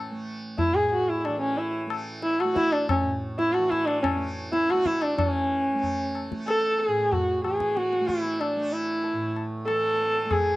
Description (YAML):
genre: indian classical, Hindustani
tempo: 92 BPM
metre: 5/4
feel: straight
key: A raga bilaval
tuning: A4 = 440 Hz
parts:
  - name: tanpura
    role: drone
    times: 0.0-10.6 s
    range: A2 to A3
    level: -35 LUFS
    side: right 2 dB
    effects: none
  - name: dark sarangi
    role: melody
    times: 0.6-10.6 s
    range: C#4 to A4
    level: -24 LUFS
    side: equal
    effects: none
  - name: tabla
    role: percussion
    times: 0.6-10.5 s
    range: none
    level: -31 LUFS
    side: left 3 dB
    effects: none
room: light reverb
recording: dry, close 1970s-style studio recording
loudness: -23 LUFS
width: side -18 dB against mid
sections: 0.0-5.2 A section; 5.2-10.6 B section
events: speeding up 0.0-10.6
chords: none